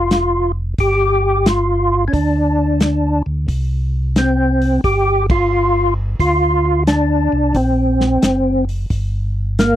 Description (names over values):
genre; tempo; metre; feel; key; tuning
soul jazz organ trio; 89 BPM; 4/4; swing 67% on 8ths; G minor; A4 = 440 Hz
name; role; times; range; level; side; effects
percussive tonewheel organ; melody; 0.0-9.8 s; Bb3 to G4; -15 LUFS; equal; slow rotary speaker, overdrive, chorus vibrato
mellow tonewheel organ; bass; 0.0-9.8 s; F1 to D2; -18 LUFS; equal; chorus vibrato, stopped rotary speaker
warm soul drum kit; drums; 0.1-9.8 s; hi-hat, kick drum, ride cymbal, snare drum; -17 LUFS; equal; none
room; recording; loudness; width
little or no reverb; dry, close 1970s-style studio recording; -14 LUFS; side -12 dB against mid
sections
0.0-9.8 A section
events
band accent 5.2-5.5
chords
0.0 N.C.; 0.8 G5; 3.5 C5; 6.2 D7alt; 8.9 Gm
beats
0.10 | 0.78 1.46 2.13 2.81 | 3.48 4.16 4.84 5.51 | 6.19 6.87 7.55 8.22 | 8.90 9.58